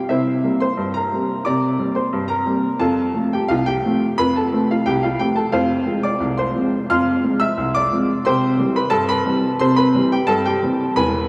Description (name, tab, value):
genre	ragtime piano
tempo	88 BPM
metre	2/4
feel	straight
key	C major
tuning	A4 = 437 Hz
part	clear upright piano	solo	0.0-11.3 s	E1 to F6	-19 LUFS	equal	none
room	wet cathedral reverb, RT60 5.6 s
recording	in a vast, echoing space, small room ambience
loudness	-19 LUFS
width	mono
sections	0.1-11.3 A section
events	none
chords	0.1 C7; 2.8 F; 5.5 Fm; 8.2 C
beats	| 0.08 0.76 | 1.44 2.12 | 2.80 3.48 | 4.17 4.85 | 5.53 6.21 | 6.89 7.57 | 8.24 8.93 | 9.60 10.28 | 10.96